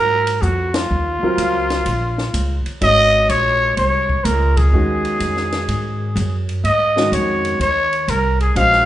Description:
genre	modal jazz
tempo	125 BPM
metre	4/4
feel	swing 67% on 8ths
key	Eb dorian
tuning	A4 = 440 Hz
part	growling trumpet	melody	0.0-8.9 s	F4 to F5	-17 LUFS	equal	none
part	clear concert grand piano	accompaniment	0.0-8.9 s	Eb3 to Db5	-22 LUFS	equal	none
part	upright bass	bass	0.0-8.9 s	Ab1 to Ab2	-20 LUFS	equal	none
part	compact cocktail drum kit	drums	0.3-8.9 s	hi-hat, kick drum, ride cymbal, snare drum	-28 LUFS	left 1 dB	none
room	moderate large studio reverb, RT60 0.9 s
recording	band playing live in one room, nothing above 10.6 kHz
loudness	-15 LUFS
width	side -13 dB against mid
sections	0.0-8.9 A section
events	band accent 0.7, 4.5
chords	0.0 Eb9sus4

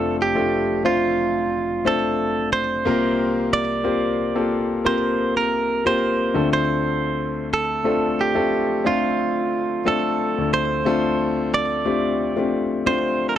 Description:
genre	pop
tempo	60 BPM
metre	4/4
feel	straight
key	unclear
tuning	A4 = 441 Hz
part	direct-recorded clean electric guitar	melody	0.0-13.4 s	F4 to D5	-22 LUFS	right 4 dB	slapback echo
part	clear grand piano	accompaniment	0.0-13.4 s	F1 to C5	-21 LUFS	left 3 dB	none
room	little or no reverb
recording	dry, close 1970s-style studio recording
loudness	-19 LUFS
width	side -10 dB against mid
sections	0.0-13.4 A section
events	none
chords	0.0 F6; 2.9 C7sus4; 6.4 Dm7

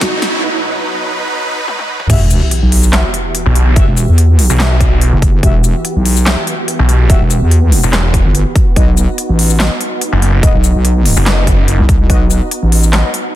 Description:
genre	heavy wobble dubstep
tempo	144 BPM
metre	4/4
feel	swing 53% on 16ths, half-time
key	E harmonic minor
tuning	A4 = 439 Hz
part	supersaw chords	sustained chords	0.0-13.4 s	F#2 to B4	-21 LUFS	right 1 dB	sidechain pumping, low-pass filter
part	big-room dance drum kit	drums	0.0-13.2 s	crash cymbal, handclaps, hi-hat, shaker, snare drum, toms	-17 LUFS	left 1 dB	overdrive, studio reverb
part	electronic kick drum	drums	0.0-12.2 s	none	-12 LUFS	equal	overdrive, studio reverb
part	riser and sub drop	sound effects	0.0-3.8 s	none	-18 LUFS	right 1 dB	none
part	mellow brass ensemble	stabs	2.1-13.1 s	F#4 to E5	-24 LUFS	left 3 dB	digital delay
part	wobble bass	bass	2.1-13.0 s	E1 to E2	-10 LUFS	equal	chorus, overdrive
part	snarling distorted saw bass	bass	3.5-11.8 s	E1 to B1	-11 LUFS	equal	distortion, overdrive
room	little or no reverb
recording	dense, heavily limited modern master, high-pass filter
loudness	-9 LUFS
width	side -14 dB against mid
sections	0.0-2.1 A section; 2.1-13.4 B section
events	build-up 0.0-2.1; drum fill 0.0-0.4, 1.7-2.1; riser 0.0-0.4; break 0.4-2.1; drop 2.1-13.4; impact 2.1-3.8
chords	0.4 B; 2.1 Emadd9; 8.8 B

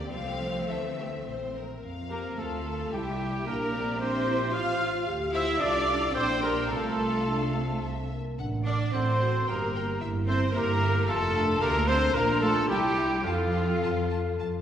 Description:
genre	quick classical-period movement for symphony orchestra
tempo	102-114 BPM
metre	3/4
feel	rubato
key	F major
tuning	A4 = 440 Hz
part	rich studio violin section	melody	0.0-14.5 s	D5 to A5	-41 LUFS	left 5 dB	none
part	rich studio violin section	second line	0.0-14.4 s	F4 to F5	-37 LUFS	left 3 dB	none
part	warm studio viola section	accompaniment	0.0-14.4 s	A3 to F5	-35 LUFS	equal	none
part	dark French horn section	sustained chords	0.0-14.6 s	Bb3 to C5	-34 LUFS	left 1 dB	none
part	rich studio cello section	bass	0.0-14.4 s	D3 to F4	-34 LUFS	right 2 dB	none
part	rich studio double bass section	bass	0.0-14.6 s	F1 to F2	-32 LUFS	right 1 dB	none
part	small flute group	second line	2.1-14.4 s	F5 to F6	-35 LUFS	equal	none
part	warm clarinet	second line	2.1-14.4 s	C4 to C5	-37 LUFS	left 1 dB	none
part	warm trumpet	stabs	2.1-14.4 s	F4 to F5	-31 LUFS	equal	none
room	wet concert hall reverb, RT60 2.0 s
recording	heard from further back in the room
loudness	-25 LUFS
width	side -9 dB against mid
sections	0.0-1.8 A section; 1.8-14.6 B section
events	none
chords	0.0 Gm; 1.8 F; 2.9 C; 3.5 C7/Bb; 4.5 F/A; 5.1 Dm; 6.2 Gm/Bb; 6.7 F/C; 7.8 C; 8.4 D7/A; 9.5 Gm; 10.0 C7/G; 11.1 F; 11.6 Bb/D; 12.1 Bb; 12.7 C; 13.2 F

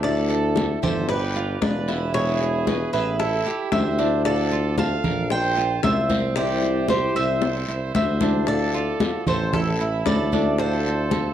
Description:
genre	latin, Cuban son and guajira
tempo	114 BPM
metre	4/4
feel	straight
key	unclear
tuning	A4 = 440 Hz
part	Cuban tres	melody	0.0-11.3 s	A4 to A5	-27 LUFS	right 1 dB	none
part	bright trumpet	second line	0.0-11.3 s	E4 to F5	-31 LUFS	right 4 dB	none
part	nylon-string guitar	accompaniment	0.0-11.3 s	B2 to F4	-28 LUFS	left 4 dB	none
part	Cuban tres	arpeggios	0.0-11.3 s	C4 to E5	-29 LUFS	right 6 dB	none
part	clear tuba	bass	0.0-11.3 s	E1 to D2	-25 LUFS	equal	none
part	bongos	percussion	0.0-11.3 s	none	-30 LUFS	left 6 dB	none
part	congas	percussion	0.0-11.3 s	none	-26 LUFS	equal	none
part	guiro	percussion	0.0-11.3 s	none	-38 LUFS	left 4 dB	none
room	moderate large studio reverb, RT60 0.9 s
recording	dark, warm production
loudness	-20 LUFS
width	side -10 dB against mid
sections	0.0-11.3 A section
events	drum fill 7.4-8.5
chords	0.0 Dsus2; 1.1 G7; 2.1 E; 3.2 Am7; 4.3 Dm7; 5.3 Bbsus2; 6.4 C; 8.5 Dm7; 9.5 A; 10.6 Dm7

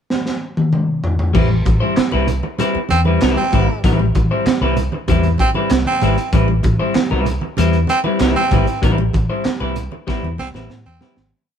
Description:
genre	funk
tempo	96 BPM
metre	4/4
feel	straight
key	A minor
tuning	A4 = 440 Hz
part	crunchy breakbeat drum kit	drums	0.1-11.3 s	crash cymbal, handclaps, hi-hat, kick drum, snare drum, toms	-18 LUFS	right 1 dB	none
part	electric guitar at the edge of break-up	accompaniment	1.3-11.2 s	G3 to C5	-20 LUFS	left 3 dB	spring reverb
part	vintage muted fingered electric bass	bass	1.3-11.3 s	G#1 to A2	-18 LUFS	equal	none
part	congas	percussion	1.3-11.2 s	none	-27 LUFS	right 6 dB	none
part	growling baritone saxophone	second line	2.9-11.3 s	C4	-19 LUFS	right 3 dB	none
room	light reverb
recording	band playing live in one room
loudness	-14 LUFS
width	side -8 dB against mid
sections	0.0-1.4 pickup bar; 1.4-11.3 groove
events	drum fill 0.1-1.4, 10.1-11.3; fade-out 8.8-11.3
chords	0.0 N.C.; 1.4 Am9

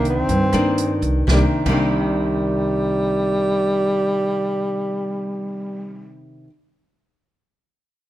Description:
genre	bossa nova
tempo	free time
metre	none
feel	none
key	C minor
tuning	A4 = 440 Hz
part	breathy tenor saxophone	melody	0.0-6.1 s	G3 to C4	-21 LUFS	equal	none
part	nylon-string guitar	accompaniment	0.0-6.5 s	G2 to D4	-23 LUFS	equal	none
part	upright bass	bass	0.0-6.4 s	C2 to G2	-24 LUFS	equal	none
part	open jazz drum kit	drums	0.0-1.8 s	crash cymbal, hi-hat, kick drum, rim click, snare drum	-25 LUFS	right 1 dB	none
room	light reverb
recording	minimal, uncompressed stereo recording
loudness	-18 LUFS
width	side -14 dB against mid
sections	0.0-1.3 A section; 1.3-5.4 B section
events	slowing down 0.0-1.3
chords	0.0 Cm9

